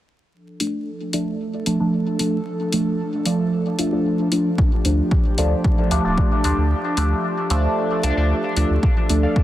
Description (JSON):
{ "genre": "dub techno", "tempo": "113 BPM", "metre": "4/4", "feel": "straight", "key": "D minor", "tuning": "A4 = 441 Hz", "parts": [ { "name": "airy breathy pad", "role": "sustained chords", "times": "0.3-9.4 s", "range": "F3 to A4", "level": "-28 LUFS", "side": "equal", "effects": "chorus, sidechain pumping" }, { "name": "resonant sweep polysynth", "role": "stabs", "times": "0.6-9.4 s", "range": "F3 to D4", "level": "-21 LUFS", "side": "equal", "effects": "chorus, phaser, sidechain pumping, dub echo" }, { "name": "electronic hi-hat", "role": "drums", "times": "0.6-9.2 s", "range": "none", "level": "-26 LUFS", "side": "left 2 dB", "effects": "overdrive" }, { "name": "electronic kick drum", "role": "drums", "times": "4.6-9.4 s", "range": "none", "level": "-19 LUFS", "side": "equal", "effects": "none" }, { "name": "warm sub bass", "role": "bass", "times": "4.8-9.3 s", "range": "D1 to D2", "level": "-20 LUFS", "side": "equal", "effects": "sidechain pumping" }, { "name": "warbly lo-fi synth keys", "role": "riff", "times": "9.2-9.4 s", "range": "A4 to F5", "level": "-28 LUFS", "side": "left 3 dB", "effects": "chorus, sidechain pumping" } ], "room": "light reverb", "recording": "dense, heavily limited modern master, vinyl crackle", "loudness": "-18 LUFS", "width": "side -13 dB against mid", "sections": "0.3-8.8 A section", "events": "filter sweep on analog polysynth 0.3-8.8; kick drops out 6.7-8.8", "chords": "0.3 Dm" }